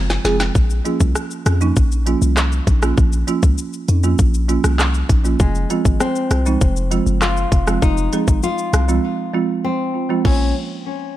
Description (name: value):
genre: dancehall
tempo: 99 BPM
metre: 4/4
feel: straight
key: Bb minor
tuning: A4 = 439 Hz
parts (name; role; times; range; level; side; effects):
- warm 808-style bass; bass; 0.0-10.5 s; F1 to F2; -18 LUFS; equal; none
- island pop drum kit; drums; 0.1-10.4 s; crash cymbal, handclaps, hi-hat, kick drum, rim click, shaker, snare drum; -18 LUFS; equal; none
- folk marimba with medium mallets; accompaniment; 0.2-10.5 s; F3 to Ab4; -22 LUFS; right 6 dB; none
- nylon-string guitar; second line; 5.4-10.5 s; Ab3 to F4; -23 LUFS; left 4 dB; ping-pong delay
room: little or no reverb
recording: none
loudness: -15 LUFS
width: side -14 dB against mid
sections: 0.6-10.2 A section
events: drum fill 0.0-0.6; break 9.0-10.2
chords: 0.0 Fm; 0.6 Bbm; 5.4 Fm; 10.2 Bbm